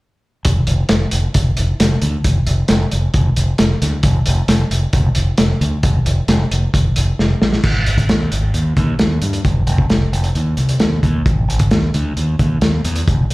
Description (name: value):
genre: classic rock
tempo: 133 BPM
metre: 4/4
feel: straight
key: F major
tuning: A4 = 441 Hz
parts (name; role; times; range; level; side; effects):
- vintage drum kit; drums; 0.4-13.3 s; crash cymbal, hi-hat, kick drum, snare drum; -16 LUFS; equal; none
- growling fingered electric bass; bass; 0.5-13.3 s; F1 to G2; -16 LUFS; equal; overdrive
room: little or no reverb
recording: live gig heard through the venue's PA, club reverb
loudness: -13 LUFS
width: side -21 dB against mid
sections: 0.5-7.6 A section; 7.6-13.3 B section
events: drum fill 7.2-7.6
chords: none